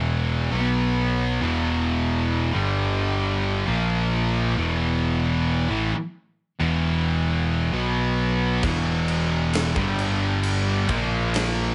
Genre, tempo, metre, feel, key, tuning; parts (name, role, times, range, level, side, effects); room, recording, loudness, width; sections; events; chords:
stoner and doom metal; 66 BPM; 4/4; straight; E minor; A4 = 437 Hz
fuzz guitar; riff; 0.0-11.7 s; E2 to B3; -31 LUFS; equal; distortion
heavy high-gain guitar; riff; 0.0-11.7 s; E2 to B3; -30 LUFS; equal; distortion
thick fuzz guitar; riff; 0.0-11.7 s; E2 to B3; -29 LUFS; equal; distortion
picked electric bass; bass; 0.0-11.7 s; E1 to B1; -29 LUFS; equal; overdrive
big rock drum kit; drums; 8.6-11.6 s; crash cymbal, kick drum, snare drum; -31 LUFS; equal
little or no reverb; nothing above 10.9 kHz; -23 LUFS; mono
0.0-11.7 A section
0.0 E5; 0.5 B5; 1.4 E5; 2.5 G5; 3.7 A#5; 4.6 E5; 7.7 B5; 8.6 E5; 9.8 G5; 10.9 A#5